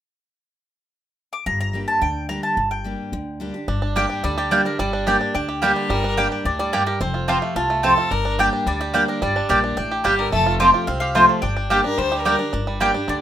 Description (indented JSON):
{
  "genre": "bluegrass",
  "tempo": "217 BPM",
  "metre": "4/4",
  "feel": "straight",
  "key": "G minor",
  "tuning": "A4 = 442 Hz",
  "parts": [
    { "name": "mandolin", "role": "melody", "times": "1.3-13.2 s", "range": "Bb4 to D6", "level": "-25 LUFS", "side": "left 1 dB", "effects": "none" },
    { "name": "picked steel-string acoustic guitar", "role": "accompaniment", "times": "1.5-13.2 s", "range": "F2 to G4", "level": "-27 LUFS", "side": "left 2 dB", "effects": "none" },
    { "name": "upright bass", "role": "bass", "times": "1.5-13.2 s", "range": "F1 to D2", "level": "-28 LUFS", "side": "left 1 dB", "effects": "none" },
    { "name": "bluegrass banjo", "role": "melody", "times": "3.7-13.2 s", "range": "D3 to G4", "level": "-25 LUFS", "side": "right 4 dB", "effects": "none" },
    { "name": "mandolin", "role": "stabs", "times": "4.0-12.9 s", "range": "Bb3 to A5", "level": "-17 LUFS", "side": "right 1 dB", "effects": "none" },
    { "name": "clear fiddle", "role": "second line", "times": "5.6-12.5 s", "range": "G4 to C5", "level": "-24 LUFS", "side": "left 2 dB", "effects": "none" }
  ],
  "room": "moderate studio reverb, RT60 0.5 s",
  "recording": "rough home demo mix",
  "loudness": "-18 LUFS",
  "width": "side -11 dB against mid",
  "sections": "0.4-1.5 A section; 1.5-3.7 B section; 3.7-12.5 C section",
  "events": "none",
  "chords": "0.4 N.C.; 1.5 Gm; 7.0 F; 8.1 Gm; 10.3 F; 11.4 Gm",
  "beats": "| 0.35 0.63 0.91 1.18 | 1.46 1.74 2.02 2.29 | 2.57 2.85 3.13 3.40 | 3.68 3.96 4.24 4.51 | 4.79 5.07 5.34 5.62 | 5.90 6.17 6.45 6.73 | 7.01 7.28 7.56 7.83 | 8.11 8.39 8.66 8.94 | 9.22 9.49 9.77 10.05 | 10.32 10.60 10.88 11.15 | 11.43 11.71 11.98 12.26 | 12.53 12.81 13.09"
}